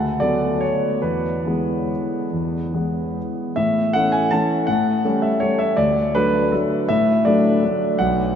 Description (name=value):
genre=classical, piano waltz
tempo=137-170 BPM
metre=3/4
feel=rubato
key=A major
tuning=A4 = 440 Hz
part: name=warm concert grand piano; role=solo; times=0.0-8.4 s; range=B1 to A5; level=-17 LUFS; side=equal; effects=none
room=wet cathedral reverb, RT60 6.5 s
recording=in a vast, echoing space, nothing above 7.9 kHz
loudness=-17 LUFS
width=side -8 dB against mid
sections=0.0-3.6 A section; 3.6-8.4 B section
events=none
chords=0.0 Bm7/D; 1.0 E; 3.6 A; 4.7 A7; 5.8 D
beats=0.20 0.62 | 1.04 1.46 1.90 | 2.32 2.75 3.17 | 3.58 3.95 4.32 | 4.68 5.05 5.42 | 5.78 6.14 6.51 | 6.88 7.25 7.62 | 7.99